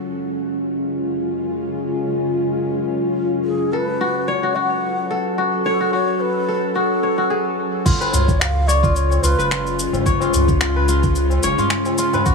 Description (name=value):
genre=organic downtempo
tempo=109 BPM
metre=4/4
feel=swing 55% on 16ths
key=unclear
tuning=A4 = 440 Hz
part: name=bowed-like drone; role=sustained chords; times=0.0-12.3 s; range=F#2 to A4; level=-22 LUFS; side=left 2 dB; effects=built-in reverb, sidechain pumping
part: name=kora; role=arpeggios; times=0.0-0.2, 3.7-12.3 s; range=E#4 to C#5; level=-22 LUFS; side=left 2 dB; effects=digital delay
part: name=breathy bright low ney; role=melody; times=3.4-9.8 s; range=G#4 to F#5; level=-25 LUFS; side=equal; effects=vintage 12-bit sampler grit, digital delay
part: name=warm sub bass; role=bass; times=7.9-12.3 s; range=F#1 to C#2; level=-19 LUFS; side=right 1 dB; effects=sidechain pumping
part: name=afro-pop drum kit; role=drums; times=7.9-12.3 s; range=crash cymbal, finger snaps, shaker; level=-24 LUFS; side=left 2 dB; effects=none
part: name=electronic kick drum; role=drums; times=7.9-12.3 s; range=none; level=-20 LUFS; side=right 1 dB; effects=none
part: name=tabla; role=percussion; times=8.0-12.2 s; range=none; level=-27 LUFS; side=left 3 dB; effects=none
room=light reverb, studio ambience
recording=none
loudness=-17 LUFS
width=side -4 dB against mid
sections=0.0-7.9 A section; 7.9-12.3 B section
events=filter sweep on synth drone 0.0-7.9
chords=0.0 C#/F#; 3.5 F#madd9; 7.9 C#7/F#